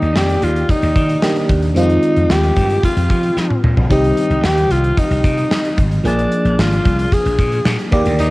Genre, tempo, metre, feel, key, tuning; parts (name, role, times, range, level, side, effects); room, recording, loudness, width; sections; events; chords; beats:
1980s-style pop; 112 BPM; 4/4; straight; A4 = 439 Hz
breathy alto saxophone; melody; 0.0-8.3 s; D4 to Ab4; -18 LUFS; left 1 dB; cassette tape, shimmer reverb
FM electric piano; accompaniment; 0.0-8.3 s; Eb3 to D5; -19 LUFS; equal; chorus, phaser, shimmer reverb
slap bass; bass; 0.0-8.3 s; Ab1 to F3; -17 LUFS; equal
gated 80s drum kit; drums; 0.0-8.3 s; hi-hat, kick drum, snare drum, toms; -18 LUFS; equal; cassette tape
light reverb, small room ambience; home recording on cassette; -13 LUFS; side -20 dB against mid
0.0-8.3 A section
drum fill 3.4-3.9
0.0 Ebmaj7; 1.8 Fm7; 3.9 Cm; 6.0 Bb7
0.15 0.69 1.23 | 1.76 2.30 2.83 3.37 | 3.90 4.44 4.98 5.51 | 6.05 6.58 7.12 7.65 | 8.19